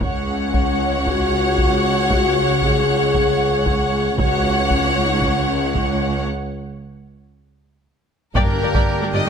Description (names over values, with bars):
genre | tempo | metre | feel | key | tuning
cinematic, epic orchestral film score | 115 BPM | 4/4 | straight | unclear | A4 = 440 Hz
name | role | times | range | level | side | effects
warm chamber violin section | melody | 0.0-9.3 s | D5 to G5 | -27 LUFS | right 2 dB | none
bright studio violin section | second line | 0.0-9.3 s | Bb4 to Gb5 | -25 LUFS | left 3 dB | none
rich symphonic viola section | accompaniment | 0.0-9.3 s | G4 to D5 | -24 LUFS | equal | none
dark French horn section | sustained chords | 0.0-9.3 s | Bb3 to Ab4 | -23 LUFS | left 6 dB | none
rich symphonic cello section | bass | 0.0-9.3 s | Db2 to G2 | -25 LUFS | right 2 dB | none
rich symphonic double bass section | bass | 0.0-9.2 s | G1 to Db2 | -24 LUFS | right 2 dB | none
taiko ensemble | drums | 0.0-9.2 s | none | -23 LUFS | equal | none
bright trombone section | sustained chords | 8.3-9.3 s | D3 to G3 | -27 LUFS | right 4 dB | none
chamber organ, soft reed | sustained chords | 8.3-9.3 s | Bb3 to G5 | -26 LUFS | left 1 dB | none
timpani | percussion | 8.4-9.1 s | G2 | -26 LUFS | left 1 dB | none
room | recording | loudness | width
moderate scoring stage reverb, RT60 1.6 s | close, detailed microphones | -16 LUFS | side -7 dB against mid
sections
0.0-8.4 A section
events
break 6.3-8.4; drum fill 7.8-8.4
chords
0.0 Dbsus4; 6.3 N.C.; 8.4 Gm